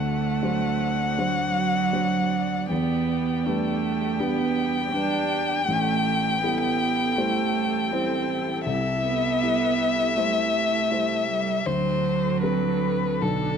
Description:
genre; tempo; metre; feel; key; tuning
neoclassical piano and strings; 80 BPM; 4/4; rubato; unclear; A4 = 440 Hz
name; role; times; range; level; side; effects
muted violin; melody; 0.0-13.6 s; A4 to G5; -26 LUFS; left 4 dB; none
muted cello; second line; 0.0-13.6 s; D3 to D4; -26 LUFS; right 8 dB; none
felt-muted upright piano; accompaniment; 0.0-13.6 s; A1 to E5; -28 LUFS; left 3 dB; none
muted studio string section; sustained chords; 0.0-13.6 s; B3 to D5; -37 LUFS; left 1 dB; none
room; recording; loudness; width
moderate recital hall reverb, RT60 1.6 s; close, detailed microphones; -22 LUFS; side -7 dB against mid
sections
0.0-13.6 A section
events
none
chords
0.0 D7; 2.7 Em7; 5.7 Am7; 8.7 C; 11.7 D7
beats
0.43 1.18 1.93 | 2.70 3.45 4.19 4.93 | 5.67 6.42 7.17 7.91 | 8.67 9.42 10.16 10.91 | 11.66 12.43 13.22

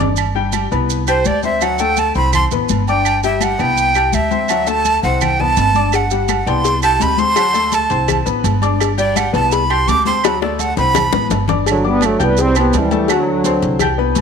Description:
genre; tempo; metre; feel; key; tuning
latin, salsa; 167 BPM; 4/4; straight; G major; A4 = 437 Hz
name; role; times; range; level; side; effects
clear upright piano; accompaniment; 0.0-14.2 s; F#3 to G6; -20 LUFS; left 12 dB; none
upright bass; bass; 0.0-14.2 s; G1 to D2; -20 LUFS; right 2 dB; none
cowbell and bongos; percussion; 0.0-0.2, 5.9-14.2 s; none; -22 LUFS; left 12 dB; none
timbales and agogo bells; percussion; 0.0-14.2 s; none; -24 LUFS; right 14 dB; none
claves; percussion; 0.2-14.0 s; none; -27 LUFS; right 14 dB; none
congas; percussion; 0.2-14.2 s; none; -25 LUFS; left 13 dB; none
maracas; percussion; 0.2-14.2 s; none; -28 LUFS; right 16 dB; none
breathy bright jazz flute; melody; 1.1-11.3 s; C5 to D6; -16 LUFS; right 2 dB; none
clear trombone section; melody; 11.7-13.8 s; D3 to C4; -16 LUFS; right 1 dB; none
room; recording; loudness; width
moderate echo chamber reverb, RT60 1.8 s, small room ambience; 1960s-style stereo with parts hard left and right; -13 LUFS; side -6 dB against mid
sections
0.2-11.7 A section; 11.7-14.2 B section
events
drum fill 0.0, 10.2-11.7; flute solo 0.2-11.7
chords
0.2 G; 0.9 C5; 1.6 D7; 2.3 C5; 3.1 G; 3.8 Cmaj7; 4.5 D7; 5.2 C5; 5.9 Gmaj7; 6.6 C5; 7.4 D7; 8.1 C5; 8.8 G; 9.5 C5; 10.2 D7; 10.9 C5; 11.7 G5; 12.4 C; 13.1 D7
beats
| 0.18 0.54 0.90 1.26 | 1.61 1.98 2.33 2.69 | 3.05 3.41 3.77 4.13 | 4.49 4.85 5.21 5.57 | 5.93 6.29 6.65 7.00 | 7.36 7.72 8.08 8.44 | 8.80 9.16 9.52 9.87 | 10.23 10.59 10.95 11.30 | 11.66 12.02 12.38 12.73 | 13.09 13.45 13.81 14.16

